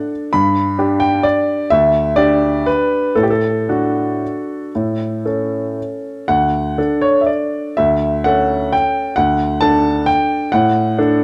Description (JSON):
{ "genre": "classical, piano waltz", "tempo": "111-138 BPM", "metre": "3/4", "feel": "rubato", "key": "D major", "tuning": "A4 = 442 Hz", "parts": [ { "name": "clear upright piano", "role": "solo", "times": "0.0-11.2 s", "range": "D2 to B5", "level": "-16 LUFS", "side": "equal", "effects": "none" } ], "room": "moderate recital hall reverb, RT60 1.6 s", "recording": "close, detailed microphones", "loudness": "-16 LUFS", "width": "mono", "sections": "0.0-11.2 A section", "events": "none", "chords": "0.3 G; 3.2 D/A; 4.7 A; 6.3 D; 7.8 A7/D; 9.2 D", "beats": "| 0.34 0.79 1.24 | 1.71 2.17 2.67 | 3.17 3.68 4.21 | 4.74 5.26 5.77 | 6.29 6.78 7.29 | 7.78 8.25 8.72 | 9.17 9.62 10.07 | 10.53 10.98" }